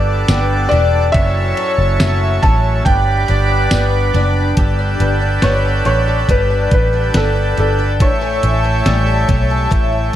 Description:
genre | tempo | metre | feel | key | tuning
dream pop | 70 BPM | 4/4 | straight | G lydian | A4 = 440 Hz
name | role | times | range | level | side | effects
felt-muted upright piano | melody | 0.0-8.8 s | A4 to A5 | -20 LUFS | equal | tape echo
accordion | sustained chords | 0.0-10.2 s | F#3 to G5 | -20 LUFS | right 2 dB | none
picked twelve-string acoustic guitar | arpeggios | 0.0-10.2 s | F#2 to A4 | -21 LUFS | left 3 dB | ensemble chorus, tape echo
vintage muted picked electric bass | bass | 0.0-10.1 s | E1 to B1 | -16 LUFS | equal | none
vibraphone with soft mallets | texture | 0.0-1.5 s | G5 to E6 | -28 LUFS | right 5 dB | tape echo
detuned 8-bit digital drum machine | drums | 0.3-10.2 s | hi-hat, kick drum, ride cymbal, snare drum, tambourine | -16 LUFS | equal | tape echo
room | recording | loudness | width
light reverb, small room ambience | echo-heavy mix | -12 LUFS | side -12 dB against mid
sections
0.0-4.6 A section; 4.6-10.2 B section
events
none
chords
0.0 Gadd9; 1.1 F#m7; 2.9 G; 4.6 Gadd9; 8.0 A7

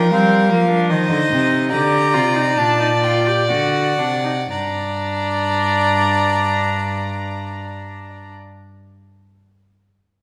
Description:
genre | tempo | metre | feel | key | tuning
classical, baroque-style fugue for string quartet | 58-78 BPM | 3/4 | straight | G minor | A4 = 441 Hz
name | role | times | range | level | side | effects
rich violin | melody | 0.0-8.3 s | Eb5 to Bb5 | -24 LUFS | equal | none
warm violin | second line | 0.0-8.3 s | Bb4 to D5 | -25 LUFS | equal | none
rich cello | bass | 0.0-8.3 s | G2 to G3 | -23 LUFS | equal | none
rich viola | accompaniment | 0.1-8.3 s | Bb3 to G4 | -24 LUFS | equal | none
room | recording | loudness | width
wet recital hall reverb, RT60 1.6 s | recorded in a church or concert hall | -18 LUFS | mono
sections
0.0-4.5 A section; 4.5-7.6 B section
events
slowing down 0.0-4.5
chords
0.0 Eb (rootless); 0.9 Cm; 1.7 Gm; 3.5 D7; 4.5 Gm

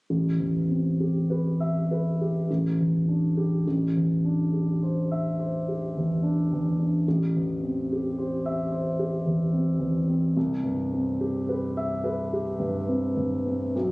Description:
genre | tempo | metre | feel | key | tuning
classical, impressionist solo piano | 48-56 BPM | 3/4 | rubato | unclear | A4 = 440 Hz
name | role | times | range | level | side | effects
warm concert grand piano | solo | 0.1-13.9 s | A1 to E5 | -23 LUFS | equal | none
room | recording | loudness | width
moderate scoring stage reverb, RT60 1.5 s | recorded on a phone in the room, studio reverb | -23 LUFS | side -24 dB against mid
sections
0.1-13.9 A section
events
none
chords
0.1 Am9; 2.5 Gsus2/A; 3.7 Cadd9/A; 7.1 Am7; 10.4 Cmaj7

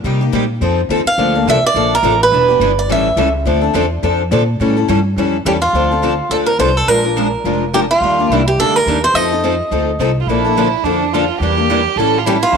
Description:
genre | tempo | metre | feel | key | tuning
acoustic string swing (jazz manouche) | 211 BPM | 4/4 | swing 57% on 8ths | D minor | A4 = 440 Hz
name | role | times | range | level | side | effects
picked steel-string acoustic guitar | accompaniment | 0.0-12.6 s | C3 to Bb4 | -18 LUFS | left 12 dB | none
picked steel-string acoustic guitar | accompaniment | 0.0-12.6 s | C3 to B4 | -21 LUFS | right 12 dB | none
upright bass | bass | 0.0-12.6 s | E1 to C3 | -19 LUFS | equal | none
picked swing-style acoustic guitar | melody | 1.1-3.3, 5.5-10.2, 12.3-12.6 s | F4 to F5 | -14 LUFS | right 3 dB | none
warm violin | second line | 10.2-12.6 s | D4 to A4 | -17 LUFS | right 11 dB | none
room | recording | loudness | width
moderate echo chamber reverb, RT60 1.9 s, studio reverb | 1960s-style stereo with parts hard left and right | -12 LUFS | side -6 dB against mid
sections
0.0-5.7 A section; 5.7-12.6 B section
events
none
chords
0.0 Cm7; 0.6 F7; 1.2 Bbmaj7; 2.3 Em7; 2.9 A7; 3.5 Dm7; 4.6 A7; 5.7 Dm7; 6.9 Bb7; 8.0 Ebmaj7; 9.1 F7; 10.3 Bbmaj7; 11.4 Em7b5; 12.0 A7

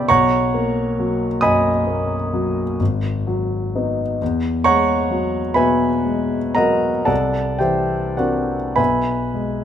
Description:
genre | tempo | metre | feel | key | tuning
classical, impressionist solo piano | 34-45 BPM (dotted quarters) | 9/8 | rubato | B major | A4 = 438 Hz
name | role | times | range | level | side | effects
clear grand piano | solo | 0.0-9.6 s | G#1 to E6 | -17 LUFS | equal | none
room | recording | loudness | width
moderate stone room reverb, RT60 1.4 s | none | -17 LUFS | side -9 dB against mid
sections
0.0-9.6 A section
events
none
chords
0.1 Bmaj9; 2.8 G#m7; 4.2 Emaj9; 7.1 C9; 8.8 B5

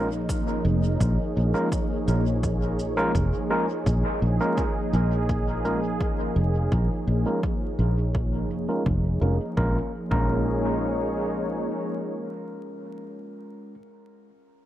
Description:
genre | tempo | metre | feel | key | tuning
ambient dub | 84 BPM | 4/4 | straight | Bb minor | A4 = 439 Hz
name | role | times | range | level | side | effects
warm analog pad | sustained chords | 0.0-13.2 s | F3 to Db5 | -29 LUFS | equal | chorus
overdriven tine electric piano | stabs | 0.0-13.7 s | Ab3 to Bb4 | -30 LUFS | equal | vintage 12-bit sampler grit, low-pass filter, dub echo
fingered electric bass | bass | 0.0-11.7 s | F1 to Bb1 | -25 LUFS | equal | none
electronic kick drum | drums | 0.3-10.3 s | none | -29 LUFS | equal | overdrive
shaker | drums | 0.3-9.4 s | none | -47 LUFS | right 2 dB | overdrive, low-pass filter on perc, low-pass filter on snare, dub echo
room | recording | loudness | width
light reverb, digital ambience | echo-heavy mix, vinyl crackle | -22 LUFS | side -13 dB against mid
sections
0.0-9.6 A section; 9.6-12.4 B section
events
filter sweep on fingered electric bass 0.0-9.6; filter sweep on tine electric piano 0.0-9.6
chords
0.0 Bbm7

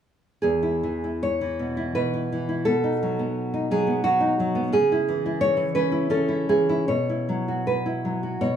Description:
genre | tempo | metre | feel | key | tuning
romantic piece for solo classical guitar | 74-88 BPM | 3/4 | rubato | E major | A4 = 441 Hz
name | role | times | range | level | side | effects
nylon-string guitar | solo | 0.4-8.6 s | E2 to C#5 | -21 LUFS | equal | none
room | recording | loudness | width
light reverb | rough home demo mix, small room ambience | -21 LUFS | side -9 dB against mid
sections
0.4-8.6 A section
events
none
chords
0.4 E; 2.7 B7; 4.7 C#m; 6.9 Bsus4

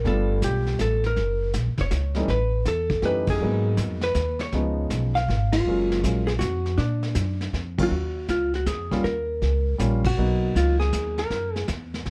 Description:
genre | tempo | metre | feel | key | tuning
jazz, small-group swing and bop | 160 BPM | 3/4 | swing 66% on 8ths | Eb minor | A4 = 440 Hz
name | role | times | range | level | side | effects
vintage hollow-body jazz guitar | melody | 0.0-11.7 s | D4 to F5 | -29 LUFS | equal | none
warm concert grand piano | accompaniment | 0.0-11.2 s | Eb3 to G4 | -30 LUFS | equal | none
upright bass | bass | 0.0-12.1 s | F1 to Bb2 | -27 LUFS | equal | none
vintage brush drum kit | drums | 0.0-12.1 s | brushed snare drum, crash cymbal, hi-hat, kick drum, ride cymbal, snare drum | -34 LUFS | equal | none
room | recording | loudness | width
light reverb | dark, warm production | -24 LUFS | mono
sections
0.0-7.9 A section; 7.9-12.1 B section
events
band accent 3.2, 5.5, 7.7, 10.0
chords
0.1 G9; 1.2 Gb; 2.3 A7#11; 3.4 Abm9; 4.5 Db7; 5.7 Gbmaj9; 6.8 Bb; 7.9 Ebm9; 9.0 Eb7; 10.2 Abm9; 11.3 Gb

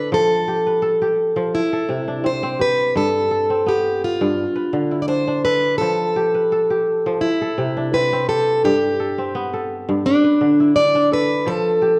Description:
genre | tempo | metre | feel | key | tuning
west african traditional | 84 BPM | 4/4 | straight | F lydian | A4 = 440 Hz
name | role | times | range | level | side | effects
picked plugged-in steel-string acoustic guitar | melody | 0.0-12.0 s | D4 to D5 | -20 LUFS | equal | none
kora | arpeggios | 0.0-12.0 s | G2 to B4 | -25 LUFS | equal | none
room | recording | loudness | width
wet recital hall reverb, RT60 1.3 s | worn, warbling old tape, cassette tape, warbly pitch drift | -19 LUFS | mono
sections
0.0-12.0 A section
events
none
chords
0.1 F; 1.5 C; 3.0 G; 4.4 Dm; 5.8 F; 7.2 C; 8.6 G; 10.1 D5; 11.5 F

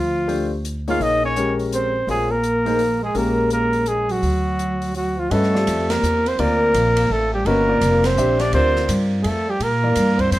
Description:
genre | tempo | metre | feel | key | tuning
modal jazz | 167 BPM | 3/4 | swing 64% on 8ths | G dorian from 5.3 s | A4 = 440 Hz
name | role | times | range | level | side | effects
mellow trumpet | melody | 0.0-10.4 s | F4 to F5 | -20 LUFS | equal | none
breathy tenor saxophone | second line | 0.0-10.4 s | F3 to F4 | -25 LUFS | right 2 dB | none
upright bass | bass | 0.0-10.4 s | F1 to Bb2 | -23 LUFS | equal | none
warm concert grand piano | accompaniment | 0.3-10.3 s | E3 to F5 | -25 LUFS | left 3 dB | none
open jazz drum kit | drums | 0.3-10.4 s | hi-hat, kick drum, ride cymbal, snare drum | -32 LUFS | equal | none
room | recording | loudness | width
moderate studio reverb, RT60 0.7 s | none | -17 LUFS | side -16 dB against mid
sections
0.0-5.3 A section; 5.3-10.4 B section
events
band accent 5.8, 8.0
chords
0.0 Dm7; 1.0 Bbm9; 4.2 D; 5.3 Gm9

